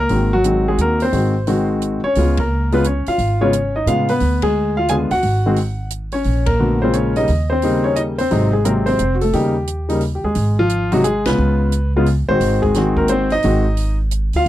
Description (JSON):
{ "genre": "jazz piano trio", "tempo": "176 BPM", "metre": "3/4", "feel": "swing 65% on 8ths", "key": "Ab mixolydian", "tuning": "A4 = 440 Hz", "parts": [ { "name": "warm baby grand piano", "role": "melody", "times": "0.0-14.5 s", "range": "C3 to Ab5", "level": "-16 LUFS", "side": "left 1 dB", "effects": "none" }, { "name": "upright bass", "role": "bass", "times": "0.0-14.5 s", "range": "F1 to A2", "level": "-20 LUFS", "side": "right 1 dB", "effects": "none" }, { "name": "compact cocktail drum kit", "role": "drums", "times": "0.1-14.5 s", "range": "hi-hat, kick drum, ride cymbal, snare drum", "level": "-29 LUFS", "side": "right 2 dB", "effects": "none" } ], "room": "little or no reverb", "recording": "dry, close 1970s-style studio recording", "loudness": "-15 LUFS", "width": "side -13 dB against mid", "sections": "0.0-10.4 A section; 10.4-14.5 A section", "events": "band accent 2.3, 4.4, 6.4, 11.2", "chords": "0.1 Ab7; 2.2 Db7; 4.2 Ddim7; 5.2 Ab7(no3); 6.3 Bbm7; 7.3 Eb7; 8.3 Ab7; 9.0 F; 9.3 Eb7; 10.4 Ab7(no3); 11.4 Db7; 12.4 Ab7", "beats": "| 0.10 0.45 0.79 | 1.13 1.47 1.81 | 2.16 2.50 2.84 | 3.18 3.53 3.87 | 4.21 4.55 4.89 | 5.24 5.58 5.92 | 6.26 6.60 6.94 | 7.29 7.63 7.97 | 8.31 8.65 8.99 | 9.33 9.68 10.02 | 10.36 10.70 11.04 | 11.38 11.72 12.06 | 12.41 12.75 13.09 | 13.43 13.77 14.12 | 14.46" }